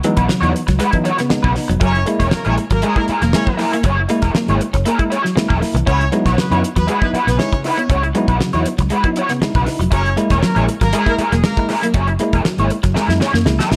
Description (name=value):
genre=funk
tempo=118 BPM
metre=4/4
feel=straight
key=unclear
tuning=A4 = 436 Hz
part: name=crunchy overdriven guitar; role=accompaniment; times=0.0-13.7 s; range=E4 to C#5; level=-23 LUFS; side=equal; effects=wah
part: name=electric guitar at the edge of break-up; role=riff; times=0.0-13.8 s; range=E3 to C#4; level=-25 LUFS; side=equal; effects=subtle chorus
part: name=bell-like tine electric piano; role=stabs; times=0.0-13.8 s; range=C#3 to E4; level=-24 LUFS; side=equal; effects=none
part: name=damped 70s drum kit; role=drums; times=0.0-13.8 s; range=hi-hat, kick drum, snare drum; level=-22 LUFS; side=equal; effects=none
part: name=vintage muted fingered electric bass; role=bass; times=0.2-13.8 s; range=E1 to F#2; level=-21 LUFS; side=equal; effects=none
part: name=clear horn section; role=second line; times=1.8-11.6 s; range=G#3 to C#5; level=-27 LUFS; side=equal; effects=tape echo
room=light reverb, studio reverb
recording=none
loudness=-16 LUFS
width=mono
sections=0.0-13.8 A section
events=drum fill 13.0-13.8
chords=0.0 C#m11; 1.8 F#9; 5.9 C#m11; 9.9 F#9